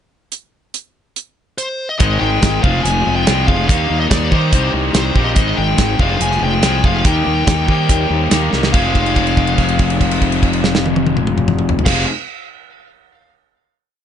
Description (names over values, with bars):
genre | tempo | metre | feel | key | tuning
classic rock | 142 BPM | 4/4 | straight | F minor | A4 = 443 Hz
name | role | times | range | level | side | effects
damped 70s drum kit | drums | 0.3-12.0 s | crash cymbal, hi-hat, kick drum, snare drum, toms | -16 LUFS | equal | none
smooth overdriven lead guitar | melody | 1.6-12.0 s | C5 to Ab5 | -22 LUFS | left 1 dB | plate reverb
overdriven reed electric piano | accompaniment | 2.0-12.1 s | Eb4 to Eb5 | -29 LUFS | left 7 dB | fast tremolo, plate reverb
cranked stack guitar | riff | 2.0-12.1 s | F2 to F4 | -20 LUFS | left 14 dB | overdrive
raw garage guitar | riff | 2.0-12.1 s | F2 to Ab4 | -23 LUFS | right 13 dB | overdrive
fuzz fingered electric bass | bass | 2.0-12.0 s | F1 to Eb3 | -18 LUFS | equal | overdrive
room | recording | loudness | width
light reverb | nothing above 10.6 kHz | -13 LUFS | side -9 dB against mid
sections
0.3-2.0 pickup bar; 2.0-8.7 pre-chorus; 8.7-12.1 final chord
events
drum fill 8.5; held note 8.7-11.9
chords
0.3 N.C.; 2.0 Ab; 2.6 Fm; 3.7 Eb; 4.5 Cm; 5.4 Ab; 6.0 Fm; 7.1 Eb; 8.7 Fm